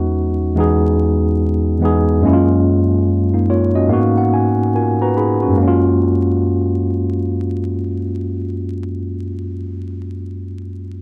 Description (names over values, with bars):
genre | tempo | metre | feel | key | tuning
hip hop | 72 BPM | 4/4 | swing 63% on 16ths | F# major | A4 = 442 Hz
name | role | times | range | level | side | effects
bright tine electric piano | accompaniment | 0.0-11.0 s | E2 to B5 | -17 LUFS | equal | cassette tape
room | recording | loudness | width
moderate studio reverb, RT60 0.7 s | dark, warm production, vinyl crackle | -16 LUFS | mono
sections
0.0-5.6 A section; 5.6-8.9 B section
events
tine electric piano fill 3.1-5.6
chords
0.0 Emaj9; 2.2 F#maj7; 3.9 G#m7; 5.6 F#maj7